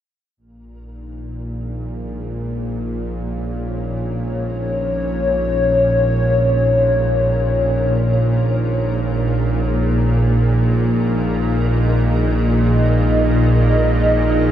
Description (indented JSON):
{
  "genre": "dark ambient drone",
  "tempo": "free time",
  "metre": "none",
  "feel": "none",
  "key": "Bb minor",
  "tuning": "A4 = 439 Hz",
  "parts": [
    { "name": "dark analog pad", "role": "sustained chords", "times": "0.4-14.5 s", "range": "Bb3 to Eb5", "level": "-20 LUFS", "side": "left 1 dB", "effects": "chorus" },
    { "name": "bowed-like drone", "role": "drone", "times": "0.9-14.5 s", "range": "Bb1 to Bb2", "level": "-17 LUFS", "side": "equal", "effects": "built-in reverb" },
    { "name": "flickering grainy texture", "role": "texture", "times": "0.8-14.5 s", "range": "Bb4", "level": "-35 LUFS", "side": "right 3 dB", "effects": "built-in reverb" }
  ],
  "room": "wet huge ambient reverb, RT60 7.8 s",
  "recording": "dark, warm production",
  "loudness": "-15 LUFS",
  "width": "side -10 dB against mid",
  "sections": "0.4-14.5 A section",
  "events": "fade-in on synth texture 0.4-14.5",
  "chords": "0.4 Bbm",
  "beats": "free time"
}